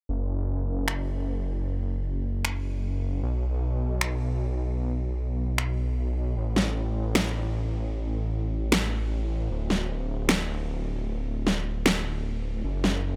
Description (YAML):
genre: future bass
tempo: 153 BPM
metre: 4/4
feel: half-time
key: F# minor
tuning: A4 = 440 Hz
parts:
  - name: detuned saw bass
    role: bass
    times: 0.1-13.2 s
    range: D1 to B1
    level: -30 LUFS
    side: equal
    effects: chorus
  - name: electronic finger snaps and snare drum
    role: drums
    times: 0.9-12.9 s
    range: none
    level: -28 LUFS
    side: equal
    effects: none
room: little or no reverb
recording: none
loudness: -28 LUFS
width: mono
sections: 0.1-13.2 A section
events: none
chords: none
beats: | 0.09 0.48 0.88 1.27 | 1.66 2.05 2.44 2.84 | 3.23 3.62 4.01 4.41 | 4.80 5.19 5.58 5.97 | 6.37 6.76 7.15 7.54 | 7.93 8.33 8.72 9.11 | 9.50 9.90 10.29 10.68 | 11.07 11.46 11.86 12.25 | 12.64 13.03